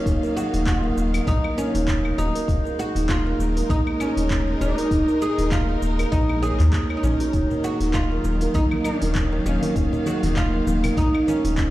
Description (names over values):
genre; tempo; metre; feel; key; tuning
organic downtempo; 99 BPM; 4/4; swing 56% on 16ths; Eb minor; A4 = 440 Hz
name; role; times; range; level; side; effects
oud; melody; 0.0-11.7 s; Db4 to Ab4; -27 LUFS; equal; tape echo
clear studio string section; sustained chords; 0.0-11.7 s; Eb3 to F5; -30 LUFS; equal; sidechain pumping
buzzing kalimba; arpeggios; 0.0-11.7 s; Bb3 to Db5; -25 LUFS; right 2 dB; tape echo
drifting glass-harmonics texture; texture; 0.0-11.7 s; Eb4 to Eb5; -38 LUFS; right 2 dB; chorus, built-in reverb
round analog bass; bass; 0.1-11.7 s; Eb1 to Eb2; -23 LUFS; equal; sidechain pumping
deep house drum kit; drums; 0.1-11.7 s; cabasa, claves, handclaps, hi-hat; -34 LUFS; left 1 dB; none
electronic kick drum; drums; 0.1-11.7 s; none; -24 LUFS; equal; none
congas and bongos; percussion; 7.5-11.4 s; none; -31 LUFS; left 2 dB; none
room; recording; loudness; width
light reverb, small room ambience; played on a big sound system in a bare room, large studio reverb; -19 LUFS; side -16 dB against mid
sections
0.0-11.7 A section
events
none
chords
0.0 Ebm7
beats
| 0.06 0.67 1.28 1.88 | 2.49 3.09 3.70 4.31 | 4.91 5.52 6.12 6.73 | 7.34 7.94 8.55 9.15 | 9.76 10.37 10.97 11.58